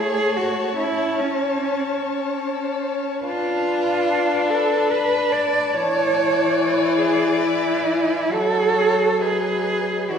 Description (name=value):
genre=classical, slow romantic movement for string quartet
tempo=72 BPM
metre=3/4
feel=uneven beats, rubato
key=A major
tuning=A4 = 441 Hz
part: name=dark violin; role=melody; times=0.0-10.2 s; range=D#5 to A5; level=-31 LUFS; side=left 8 dB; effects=none
part: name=warm violin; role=second line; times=0.0-10.2 s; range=B4 to D5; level=-27 LUFS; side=left 4 dB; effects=none
part: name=dark viola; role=accompaniment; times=0.0-10.2 s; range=E3 to D4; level=-24 LUFS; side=left 3 dB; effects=none
part: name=warm cello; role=bass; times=0.0-10.2 s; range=C#4 to D5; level=-20 LUFS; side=right 3 dB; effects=none
room=wet scoring stage reverb, RT60 1.9 s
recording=heard from further back in the room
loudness=-18 LUFS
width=side -7 dB against mid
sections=0.0-10.2 A section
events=none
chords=0.0 A; 0.8 A/C#; 3.3 Bm7b5/D; 5.7 E7; 8.3 F#m; 9.2 B/F#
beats=| 0.78 1.61 2.44 | 3.25 4.08 4.91 | 5.75 6.57 7.41 | 8.33 9.21 10.09